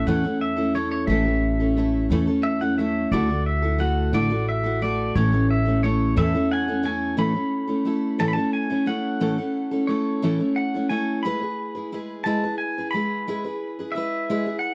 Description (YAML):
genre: acoustic folk duo or small band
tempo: 59 BPM (dotted quarters)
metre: 6/8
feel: straight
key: A major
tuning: A4 = 440 Hz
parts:
  - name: pedal steel guitar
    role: melody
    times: 0.0-14.7 s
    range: C#5 to B5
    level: -30 LUFS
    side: equal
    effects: none
  - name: picked steel-string acoustic guitar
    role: accompaniment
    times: 0.0-14.7 s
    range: A2 to B4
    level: -25 LUFS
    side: equal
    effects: none
  - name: upright bass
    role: bass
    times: 0.0-7.1 s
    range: A1 to E2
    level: -27 LUFS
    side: equal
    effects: none
room: small room ambience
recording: dry, close 1970s-style studio recording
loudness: -23 LUFS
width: mono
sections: 0.0-7.2 A section; 7.2-14.7 B section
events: pedal steel guitar solo 0.0-7.2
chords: 0.0 A; 3.1 Dadd9; 5.2 A; 11.2 E/G#